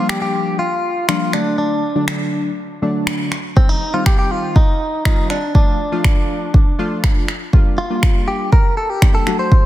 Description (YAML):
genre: dance-pop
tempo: 121 BPM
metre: 4/4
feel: straight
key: G minor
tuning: A4 = 441 Hz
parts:
  - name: direct-recorded clean electric guitar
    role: melody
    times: 0.0-9.7 s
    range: C4 to C5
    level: -21 LUFS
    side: equal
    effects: dub echo
  - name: warm analog keys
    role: accompaniment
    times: 0.0-9.7 s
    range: D3 to G4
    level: -22 LUFS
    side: left 1 dB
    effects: chorus, sidechain pumping
  - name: deep house drum kit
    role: drums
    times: 0.1-9.6 s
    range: finger snaps, kick drum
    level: -14 LUFS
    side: equal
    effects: soft clipping on snare
room: light reverb, digital ambience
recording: dense, heavily limited modern master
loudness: -14 LUFS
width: side -14 dB against mid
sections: 0.0-9.7 A section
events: none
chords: 0.0 Gm7; 1.3 D; 3.6 Cm; 5.5 Dm; 7.5 Gm7